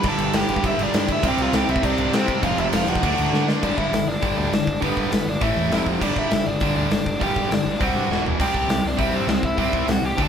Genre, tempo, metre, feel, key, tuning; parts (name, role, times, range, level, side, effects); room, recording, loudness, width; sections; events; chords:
punk rock; 201 BPM; 4/4; straight; G major from 3.6 s; A4 = 440 Hz
biting lead guitar; melody; 0.0-10.3 s; B3 to A5; -25 LUFS; equal; overdrive
distorted electric guitar; riff; 0.0-10.3 s; E2 to D4; -27 LUFS; right 8 dB; overdrive
overdriven semi-hollow guitar; riff; 0.0-10.3 s; E2 to D4; -28 LUFS; equal
tight distorted guitar; riff; 0.0-10.3 s; E2 to D4; -28 LUFS; left 8 dB; distortion
fuzz picked electric bass; bass; 0.0-10.3 s; E1 to D3; -28 LUFS; equal; overdrive
big rock drum kit; drums; 0.0-10.3 s; crash cymbal, hi-hat, kick drum, snare drum, toms; -24 LUFS; left 1 dB
moderate studio reverb, RT60 0.7 s; band playing live in one room; -19 LUFS; side -8 dB against mid
0.0-3.6 A section; 3.6-10.3 B section
drum fill 3.3, 8.1
0.0 G5; 1.2 C; 2.4 F5; 3.0 D; 3.6 G; 5.4 A5; 5.7 F5; 6.0 G5; 7.8 C5; 8.1 E5; 8.4 C